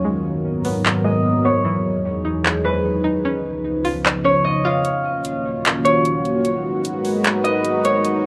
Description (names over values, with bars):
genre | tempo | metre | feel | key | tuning
hip hop, atmospheric cloud-rap | 150 BPM | 4/4 | half-time | unclear | A4 = 440 Hz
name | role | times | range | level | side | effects
Celtic harp | melody | 0.0-8.3 s | B4 to F5 | -24 LUFS | equal | low-pass filter, tape echo
dark analog pad | sustained chords | 0.0-8.3 s | Db2 to Cb5 | -23 LUFS | equal | chorus, low-pass filter
string-like resonator pluck | arpeggios | 0.0-4.8 s | E3 to F4 | -30 LUFS | equal | chorus, low-pass filter, tape echo
trap drum kit | drums | 0.6-8.1 s | handclaps, hi-hat | -22 LUFS | equal | none
room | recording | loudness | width
light reverb | worn, warbling old tape, cassette tape, warbly pitch drift, lossy compression artefacts | -19 LUFS | mono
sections
0.0-4.8 A section; 4.8-8.3 B section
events
filter sweep 0.0-4.8; drums muted 4.4-4.8; kick muted 4.8-8.3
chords
0.0 Abm7; 1.6 Emaj7; 3.2 Db7; 4.8 Ebm7; 6.4 Abm7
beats
| 0.05 0.45 0.85 1.25 | 1.65 2.05 2.45 2.85 | 3.25 3.65 4.05 4.45 | 4.85 5.25 5.65 6.05 | 6.45 6.85 7.25 7.65 | 8.05